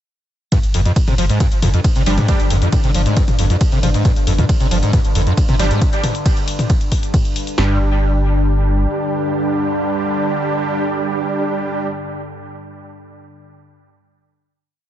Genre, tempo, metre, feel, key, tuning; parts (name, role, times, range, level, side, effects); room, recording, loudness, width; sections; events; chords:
driving peak-time techno; 136 BPM; 4/4; straight; A4 = 442 Hz
screaming distorted acid line; riff; 0.5-7.8 s; F2 to F3; -19 LUFS; equal; distortion, ensemble chorus, sidechain pumping, dub echo
deep dark ambient pad; drone; 1.6-11.9 s; G2 to D3; -24 LUFS; left 1 dB; chorus, built-in reverb, sidechain pumping
punchy analog drum machine; drums; 0.5-7.7 s; kick drum, snare drum; -16 LUFS; equal
punchy analog drum machine; drums; 0.5-7.6 s; hi-hat, ride cymbal, toms; -24 LUFS; left 2 dB
saturated sub bass; bass; 0.6-8.9 s; G1; -17 LUFS; equal; tube saturation, sidechain pumping, low-pass filter
supersaw stab; stabs; 2.1-2.4, 5.6-11.9 s; G3 to G4; -22 LUFS; right 2 dB; sidechain pumping, dub echo
light reverb; echo-heavy mix, nothing above 7.9 kHz; -14 LUFS; side -11 dB against mid
0.5-7.6 drop; 7.6-11.1 final chord
drop 0.5-7.6
0.5 G5